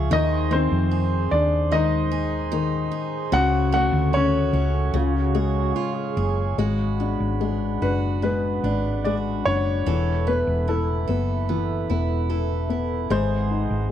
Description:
pop; 74 BPM; 4/4; straight; A4 = 440 Hz
warm upright piano; accompaniment; 0.0-13.9 s; C#3 to E4; -27 LUFS; left 7 dB
glass harmonica; sustained chords; 0.0-13.9 s; D4 to C#6; -31 LUFS; right 3 dB
picked steel-string acoustic guitar; arpeggios; 0.0-13.9 s; G#2 to A4; -32 LUFS; right 10 dB
hollow-body short-scale fingered electric bass; bass; 0.0-13.9 s; E1 to E#2; -24 LUFS; equal
warm grand piano; melody; 0.1-13.9 s; B#3 to F#5; -25 LUFS; left 1 dB; slapback echo
clear French horn section; second line; 4.9-6.6 s; E#4 to G#4; -30 LUFS; right 8 dB
light reverb; dry, close 1970s-style studio recording; -20 LUFS; side -10 dB against mid
0.0-6.6 A section; 6.6-13.9 B section
0.1 G#/D#; 3.3 F#m/C#; 4.9 C#; 6.6 G#m7b5; 9.9 Esus4; 13.1 G#7

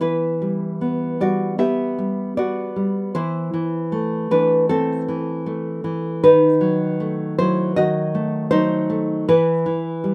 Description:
romantic piece for solo classical guitar; 78 BPM; 4/4; rubato; E minor; A4 = 440 Hz
nylon-string guitar; solo; 0.0-10.1 s; D#3 to E5; -20 LUFS; equal
light reverb; -20 LUFS; mono
0.0-10.1 A section
0.0 Em; 3.2 Am/E; 6.2 B7/D#; 9.3 Em

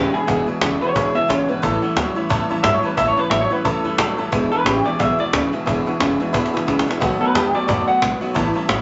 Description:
rockabilly; 178 BPM; 4/4; swing 59% on 8ths; E mixolydian; A4 = 444 Hz
electric guitar through a small old amp; melody; 0.0-8.0 s; G4 to F#5; -22 LUFS; equal
picked steel-string acoustic guitar; accompaniment; 0.0-8.8 s; E2 to F#4; -27 LUFS; equal
tack piano; accompaniment; 0.0-8.8 s; B4 to B5; -30 LUFS; equal
electric guitar through a small old amp; riff; 0.0-8.8 s; E2 to G#3; -26 LUFS; equal
upright bass; bass; 0.0-8.8 s; E1 to G2; -31 LUFS; equal
cajon; drums; 0.1-8.8 s; -25 LUFS; equal
moderate studio reverb, RT60 0.8 s; nothing above 7.8 kHz, faint mains hum; -19 LUFS; mono
0.0-8.8 A section
clean electric guitar solo 0.0-8.8; break 1.5; drum fill 6.3-7.0
0.0 E7; 1.6 A7; 4.3 E7; 7.0 B7

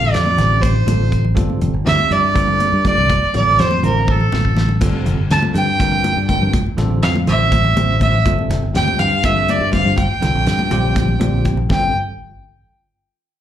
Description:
electric jazz fusion; 244 BPM (eighths); 7/8; straight; G dorian; A4 = 439 Hz
warm violin; melody; 0.0-11.9 s; A4 to A5; -18 LUFS; right 2 dB; slapback echo, plate reverb
bell-like tine electric piano; accompaniment; 0.0-11.9 s; D3 to G5; -23 LUFS; equal; fast stereo tremolo, plate reverb, slapback echo
fingered electric bass; bass; 0.0-11.9 s; F1 to G2; -18 LUFS; equal
congas; percussion; 0.0-11.9 s; -24 LUFS; left 2 dB; slapback echo
damped 70s drum kit; drums; 0.1-11.8 s; crash cymbal, hi-hat, kick drum, snare drum, toms; -22 LUFS; equal
light reverb; live gig heard through the venue's PA, club reverb; -13 LUFS; side -10 dB against mid
0.0-11.7 A section; 11.7-13.4 B section
drum fill 4.1-4.8; tine electric piano fill 11.0-11.7
0.0 F; 4.8 Gm7; 6.5 Fmaj7; 10.0 Gm9; 11.7 Gsus2

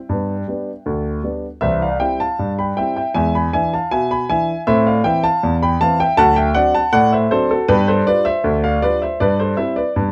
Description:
ragtime piano; 79 BPM; 2/4; straight; C major; A4 = 444 Hz
warm grand piano; solo; 0.0-10.1 s; C2 to B5; -17 LUFS; equal
light reverb; -17 LUFS; mono
0.0-10.1 A section
0.1 G; 1.6 C; 3.1 E7; 4.7 Am; 6.2 D7; 7.7 G7; 9.2 C/G

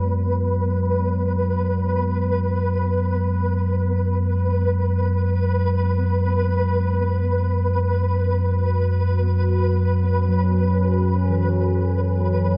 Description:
ambient; free time; A4 = 436 Hz
bronze singing bowl; arpeggios; 0.0-12.6 s; E3 to G#3; -35 LUFS; equal
deep rumbling drone; drone; 0.0-12.6 s; F#2 to F#3; -22 LUFS; equal; built-in reverb
flickering grainy texture; texture; 0.0-12.6 s; B4; -28 LUFS; equal; built-in reverb
deep dark ambient pad; sustained chords; 8.6-12.6 s; F#4 to G#5; -32 LUFS; equal; chorus, built-in reverb
moderate huge ambient reverb, RT60 7.5 s; -21 LUFS; mono
0.0-12.6 A section
0.0 F#sus2

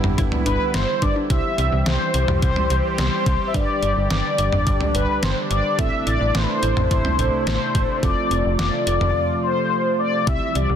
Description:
synth-pop; 107 BPM; 4/4; straight; C major; A4 = 440 Hz
FM electric piano with auto-pan; accompaniment; 0.0-10.8 s; C4 to C5; -32 LUFS; right 4 dB
sweeping resonant pad; sustained chords; 0.0-10.8 s; C3 to G4; -26 LUFS; right 2 dB; chorus
wide unison pluck; arpeggios; 0.0-1.2 s; D4 to E4; -32 LUFS; left 4 dB
slap-like FM bass; bass; 0.0-10.8 s; F1 to C2; -23 LUFS; equal
detuned 8-bit digital drum machine; drums; 0.0-10.7 s; hi-hat, kick drum, snare drum, toms; -23 LUFS; equal; overdrive
mellow synth brass; melody; 0.5-10.8 s; B4 to E5; -22 LUFS; left 2 dB; chorus, digital delay
light reverb, digital ambience; dense, heavily limited modern master; -18 LUFS; side -8 dB against mid
0.0-1.3 A section; 1.3-10.8 B section
silent gap 9.2-10.3
0.0 G6; 1.3 C; 3.5 G; 5.8 Am; 8.0 F

